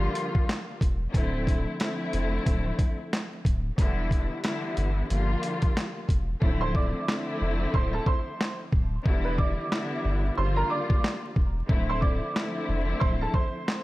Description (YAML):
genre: hip hop, boom-bap hip-hop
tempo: 91 BPM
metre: 4/4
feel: swing 58% on 16ths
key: D minor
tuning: A4 = 440 Hz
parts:
  - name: dark studio string section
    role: accompaniment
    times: 0.0-13.8 s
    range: D3 to F4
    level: -31 LUFS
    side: left 1 dB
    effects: cassette tape, high-pass filter, low-pass filter
  - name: soft dub sub bass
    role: bass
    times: 0.0-13.3 s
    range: D1 to G1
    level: -28 LUFS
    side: equal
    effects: none
  - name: boom bap sampler-style drum kit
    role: drums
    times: 0.2-13.8 s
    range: handclaps, hi-hat, kick drum, snare drum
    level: -26 LUFS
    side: equal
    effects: none
  - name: bright upright piano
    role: melody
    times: 6.6-13.8 s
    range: A4 to D6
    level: -32 LUFS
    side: right 3 dB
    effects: high-pass filter, low-pass filter, tape echo
room: studio reverb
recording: vinyl crackle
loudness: -24 LUFS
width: side -18 dB against mid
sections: 0.0-6.4 A section; 6.4-13.8 B section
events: hi-hats muted 6.4-13.8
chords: 0.0 Gm7; 1.1 Dm9; 3.8 Em7; 5.1 Gm7; 6.4 Dm9; 9.1 Em7; 10.4 Gm7; 11.7 Dm9